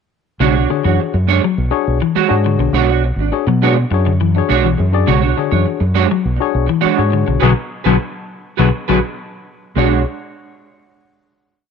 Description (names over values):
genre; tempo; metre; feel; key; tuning
afrobeat; 103 BPM; 4/4; straight; B dorian; A4 = 439 Hz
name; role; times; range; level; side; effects
clean electric guitar; arpeggios; 0.4-9.9 s; B2 to F#3; -18 LUFS; left 9 dB; none
semi-hollow electric guitar; stabs; 0.4-10.0 s; G#3 to C#5; -18 LUFS; right 14 dB; ensemble chorus
deep dub fingered electric bass; bass; 0.4-10.0 s; G#1 to B2; -16 LUFS; equal; none
tine electric piano; accompaniment; 0.7-10.0 s; D4 to D5; -20 LUFS; left 14 dB; overdrive
room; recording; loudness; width
light reverb; 1960s-style stereo with parts hard left and right; -13 LUFS; side -6 dB against mid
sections
0.4-9.8 groove; 9.8-11.7 final chord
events
band accent 7.4-9.8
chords
0.4 Bm69